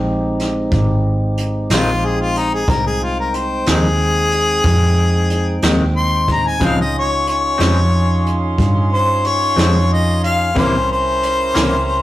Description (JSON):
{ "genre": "slow blues", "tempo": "61 BPM (dotted quarters)", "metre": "12/8", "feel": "straight", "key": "F minor", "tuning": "A4 = 439 Hz", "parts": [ { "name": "tonewheel organ", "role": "sustained chords", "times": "0.0-12.0 s", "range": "Ab3 to G5", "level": "-24 LUFS", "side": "right 1 dB", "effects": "slow rotary speaker" }, { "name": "vintage muted fingered electric bass", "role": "bass", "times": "0.0-12.0 s", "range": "Ab1 to G2", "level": "-18 LUFS", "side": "equal", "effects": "none" }, { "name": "vintage brush drum kit", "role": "drums", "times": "0.4-11.7 s", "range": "hi-hat, kick drum, snare drum", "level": "-21 LUFS", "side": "equal", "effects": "none" }, { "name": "warm harmonica", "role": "melody", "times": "1.7-12.0 s", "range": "Eb4 to C6", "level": "-18 LUFS", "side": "left 2 dB", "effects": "slapback echo" }, { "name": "semi-hollow electric guitar", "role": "accompaniment", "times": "1.7-11.7 s", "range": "F2 to Db4", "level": "-20 LUFS", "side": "left 1 dB", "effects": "harmonic tremolo" }, { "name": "bright horn section", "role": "sustained chords", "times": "6.6-12.0 s", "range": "Db4 to C6", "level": "-27 LUFS", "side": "right 3 dB", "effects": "none" } ], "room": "moderate stone room reverb, RT60 1.1 s", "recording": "rough rehearsal-room recording, warm saturation", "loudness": "-14 LUFS", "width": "side -14 dB against mid", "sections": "0.0-12.0 A section", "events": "harmonica solo 0.0-12.0", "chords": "0.0 Fm7; 6.6 Dbmaj7; 10.6 C7b9" }